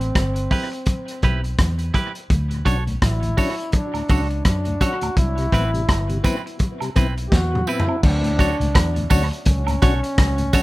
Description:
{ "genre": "roots reggae", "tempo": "84 BPM", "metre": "4/4", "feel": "swing 58% on 16ths", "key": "D major", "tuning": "A4 = 440 Hz", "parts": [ { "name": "clear trombone", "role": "melody", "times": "0.0-10.6 s", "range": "C4 to G4", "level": "-27 LUFS", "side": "equal", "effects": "dub echo, plate reverb" }, { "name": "vintage muted fingered electric bass", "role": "bass", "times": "0.0-10.5 s", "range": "G1 to F#2", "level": "-22 LUFS", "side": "equal", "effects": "none" }, { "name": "crunchy breakbeat drum kit", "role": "drums", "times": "0.0-10.6 s", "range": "crash cymbal, hi-hat, kick drum, rim click, snare drum, toms", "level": "-20 LUFS", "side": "equal", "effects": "none" }, { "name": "clean electric guitar", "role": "accompaniment", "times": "0.5-10.6 s", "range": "C4 to C#5", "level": "-28 LUFS", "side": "right 5 dB", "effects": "dub echo, plate reverb" }, { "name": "mellow tonewheel organ", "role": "accompaniment", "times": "2.5-10.6 s", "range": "D2 to F#4", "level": "-28 LUFS", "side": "left 3 dB", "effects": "slow rotary speaker, tape echo" }, { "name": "tambourine and woodblock", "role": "percussion", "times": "2.7-10.6 s", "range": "none", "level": "-32 LUFS", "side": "right 6 dB", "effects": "none" } ], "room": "light reverb", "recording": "rough home demo mix", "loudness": "-18 LUFS", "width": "side -19 dB against mid", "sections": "0.0-8.0 A section; 8.0-10.6 B section", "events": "drum fill 7.3-8.0", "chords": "0.0 Cmaj7; 2.3 Dmaj7; 5.2 Cmaj7; 8.0 Dmaj7", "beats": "0.15 0.87 1.59 | 2.30 3.02 3.74 4.46 | 5.17 5.89 6.60 7.32 | 8.04 8.75 9.47 10.18" }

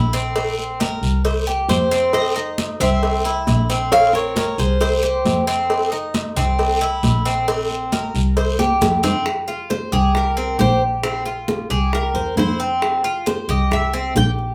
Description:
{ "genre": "latin, Cuban son and guajira", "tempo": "135 BPM", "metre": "4/4", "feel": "straight", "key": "unclear", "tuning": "A4 = 438 Hz", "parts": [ { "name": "Cuban tres", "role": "arpeggios", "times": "0.0-14.5 s", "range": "C4 to C5", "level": "-24 LUFS", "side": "equal", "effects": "none" }, { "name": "muted double bass", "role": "bass", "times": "0.0-14.5 s", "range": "Bb1 to F2", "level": "-24 LUFS", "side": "equal", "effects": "none" }, { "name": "congas", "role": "percussion", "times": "0.1-14.5 s", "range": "none", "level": "-28 LUFS", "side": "equal", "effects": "none" }, { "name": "cowbell and bongos", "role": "percussion", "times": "0.1-14.4 s", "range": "none", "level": "-27 LUFS", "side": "equal", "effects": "none" }, { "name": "guiro", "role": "percussion", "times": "0.1-9.3 s", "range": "none", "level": "-34 LUFS", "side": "equal", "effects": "none" }, { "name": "Cuban tres", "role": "melody", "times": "1.7-5.4, 9.9-14.3 s", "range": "Ab4 to G5", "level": "-24 LUFS", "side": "equal", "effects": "none" }, { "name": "nylon-string guitar", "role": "second line", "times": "1.7-5.4 s", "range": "G4 to Db5", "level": "-28 LUFS", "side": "equal", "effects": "none" } ], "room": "wet studio reverb, RT60 0.5 s", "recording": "band playing live in one room", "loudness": "-19 LUFS", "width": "mono", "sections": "0.0-9.3 A section; 9.3-14.5 B section", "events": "drum fill 8.6-9.3; Cuban tres solo 9.3-14.5", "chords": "0.4 Bbsus2; 1.3 C5; 2.1 F5; 3.0 C7; 3.9 Bbsus2; 4.8 C5; 5.7 F5; 6.6 C7; 7.5 Bbsus2; 8.4 C5; 11.9 C7; 12.8 F5; 13.7 C7", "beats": "| 0.36 0.81 1.25 1.70 | 2.14 2.59 3.03 3.48 | 3.92 4.37 4.81 5.26 | 5.70 6.15 6.59 7.04 | 7.48 7.92 8.37 8.81 | 9.26 9.70 10.15 10.59 | 11.04 11.48 11.93 12.37 | 12.82 13.26 13.71 14.15" }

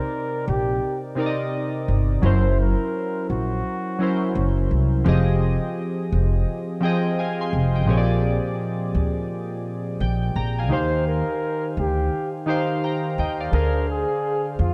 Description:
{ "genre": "lo-fi hip hop", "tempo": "85 BPM", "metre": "4/4", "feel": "swing 62% on 16ths", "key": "unclear", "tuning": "A4 = 440 Hz", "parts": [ { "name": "breathy flugelhorn", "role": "melody", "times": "0.0-4.5, 10.7-14.7 s", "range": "F4 to C5", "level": "-30 LUFS", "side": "equal", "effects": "low-pass filter, analog delay" }, { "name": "warm analog keys", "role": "accompaniment", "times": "0.0-14.7 s", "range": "Bb2 to C6", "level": "-26 LUFS", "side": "equal", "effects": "chorus, cassette tape, low-pass filter" }, { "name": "upright bass", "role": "bass", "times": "0.5-14.7 s", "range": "F1 to F2", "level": "-24 LUFS", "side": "equal", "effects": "none" } ], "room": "light reverb, small room ambience", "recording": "dark, warm production", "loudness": "-23 LUFS", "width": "mono", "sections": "0.0-14.7 A section", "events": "none", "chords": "0.0 Cm9; 2.2 F#7#11; 5.1 Fm9; 7.9 Bb13; 10.7 Eb69; 13.5 Dm7b5", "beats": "0.11 0.82 1.53 | 2.23 2.94 3.64 4.35 | 5.06 5.76 6.47 7.17 | 7.88 8.59 9.29 10.00 | 10.70 11.41 12.11 12.82 | 13.53 14.23" }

